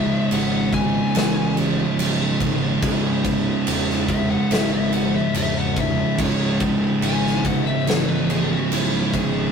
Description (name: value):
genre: stoner and doom metal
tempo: 71 BPM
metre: 4/4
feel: straight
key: C# minor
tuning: A4 = 438 Hz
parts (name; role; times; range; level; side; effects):
- fuzz lead guitar; melody; 0.0-9.5 s; E4 to G#5; -28 LUFS; left 6 dB; distortion
- thick fuzz guitar; riff; 0.0-9.5 s; C#2 to C#3; -27 LUFS; left 8 dB; distortion
- thick fuzz guitar; riff; 0.0-9.5 s; C#2 to C#3; -21 LUFS; right 3 dB; distortion
- fuzz fingered electric bass; bass; 0.0-9.5 s; C#1 to B1; -28 LUFS; equal; overdrive, tube saturation
- big rock drum kit; drums; 0.3-9.3 s; crash cymbal, kick drum, snare drum; -24 LUFS; equal; none
room: light reverb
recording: rough rehearsal-room recording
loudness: -18 LUFS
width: side -6 dB against mid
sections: 0.0-9.5 A section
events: lead electric guitar solo 0.0-9.5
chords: 0.0 C#m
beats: 0.30 1.14 1.99 | 2.83 3.67 4.50 5.34 | 6.18 7.03 7.87 8.71